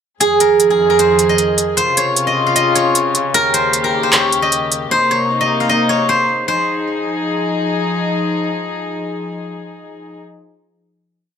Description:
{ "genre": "hip hop, trap", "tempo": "153 BPM", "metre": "4/4", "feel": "half-time", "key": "F minor", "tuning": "A4 = 440 Hz", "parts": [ { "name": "steel-string zither", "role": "melody", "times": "0.2-8.5 s", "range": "Ab4 to F5", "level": "-14 LUFS", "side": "right 2 dB", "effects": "none" }, { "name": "dark chamber string section", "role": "sustained chords", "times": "0.2-10.2 s", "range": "Eb2 to Ab4", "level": "-19 LUFS", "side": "left 3 dB", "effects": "none" }, { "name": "trap drum kit", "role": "drums", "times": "0.2-4.8 s", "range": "handclaps, hi-hat", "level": "-15 LUFS", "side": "right 1 dB", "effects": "overdrive" } ], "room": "little or no reverb", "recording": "dry, gritty hardware recording", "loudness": "-13 LUFS", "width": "side -7 dB against mid", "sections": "0.2-6.5 breakdown; 6.5-9.6 final chord", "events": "none", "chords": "0.2 Fm7; 1.8 Dbmaj7; 3.3 Eb7; 4.9 Cm7; 6.5 Fm7", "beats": "| 0.21 0.60 0.99 1.38 | 1.77 2.17 2.56 2.95 | 3.34 3.74 4.13 4.52 | 4.91 5.30 5.70 6.09 | 6.48 6.87 7.26 7.66 | 8.05 8.44 8.83 9.23" }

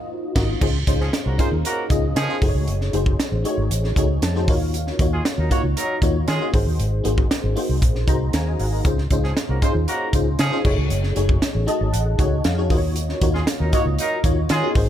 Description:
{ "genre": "polished 1980s jazz-funk pop", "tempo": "117 BPM", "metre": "4/4", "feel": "straight", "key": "Db major", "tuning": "A4 = 441 Hz", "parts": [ { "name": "FM electric piano", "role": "accompaniment", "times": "0.0-14.9 s", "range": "Ab3 to Bb5", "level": "-24 LUFS", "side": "left 2 dB", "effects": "ensemble chorus" }, { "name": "vintage muted fingered electric bass", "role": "bass", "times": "0.4-14.9 s", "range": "Gb1 to Eb3", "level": "-22 LUFS", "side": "equal", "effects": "none" }, { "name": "crisp fusion drum kit", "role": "drums", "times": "0.4-14.9 s", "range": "crash cymbal, hi-hat, kick drum, snare drum", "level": "-22 LUFS", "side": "equal", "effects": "none" }, { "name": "mellow horn section", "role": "second line", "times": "1.0-14.7 s", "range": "F3 to Db5", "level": "-27 LUFS", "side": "right 2 dB", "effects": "none" } ], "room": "little or no reverb", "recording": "none", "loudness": "-18 LUFS", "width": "side -11 dB against mid", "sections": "0.6-14.9 A section", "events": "band accent 0.0-0.6; FM electric piano fill 4.0-4.7, 7.8-8.8, 11.4-13.0", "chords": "0.0 Ab13; 0.6 Dbmaj7; 2.4 Gbm6; 4.5 Ebm7; 6.5 Ab7; 8.8 Dbmaj7; 10.6 Gbm6; 12.7 Ebm7", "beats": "0.10 | 0.61 1.13 1.65 2.16 | 2.67 3.19 3.70 4.22 | 4.73 5.25 5.76 6.28 | 6.79 7.31 7.82 8.34 | 8.85 9.36 9.88 10.39 | 10.91 11.42 11.93 12.45 | 12.96 13.47 13.99 14.50" }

